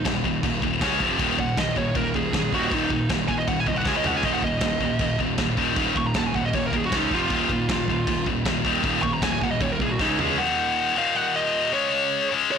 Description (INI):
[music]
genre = heavy metal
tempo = 157 BPM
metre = 4/4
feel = straight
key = Eb minor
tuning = A4 = 441 Hz
[part]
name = high-gain lead guitar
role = melody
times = 0.0-12.6 s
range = Eb4 to Db6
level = -27 LUFS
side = right 3 dB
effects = distortion, ping-pong delay
[part]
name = distorted electric guitar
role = riff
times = 0.0-10.4 s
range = Eb2 to Db4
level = -29 LUFS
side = right 15 dB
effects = distortion
[part]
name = heavy high-gain guitar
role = riff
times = 0.0-12.6 s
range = Eb2 to Db4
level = -24 LUFS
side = left 8 dB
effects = distortion
[part]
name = fuzz picked electric bass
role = bass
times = 0.0-10.4 s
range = Eb1 to Db2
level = -30 LUFS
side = equal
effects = overdrive
[part]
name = big rock drum kit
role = drums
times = 0.1-10.3 s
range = crash cymbal, kick drum, snare drum, toms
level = -28 LUFS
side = equal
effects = soft clipping on snare
[sound]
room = light reverb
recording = blown-out, overdriven recording, overdrive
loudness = -21 LUFS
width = side -7 dB against mid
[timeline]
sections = 0.0-10.4 A section; 10.4-12.6 B section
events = lead electric guitar solo 0.0-10.4; drum fill 3.9-4.2, 10.0-10.4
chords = 0.0 Eb5; 0.8 Db5; 1.0 F5; 1.2 Eb5; 3.9 Db5; 4.2 Eb5; 6.9 Db5; 7.1 F5; 7.3 Eb5; 10.0 Db5; 10.4 Ebm; 11.7 Db5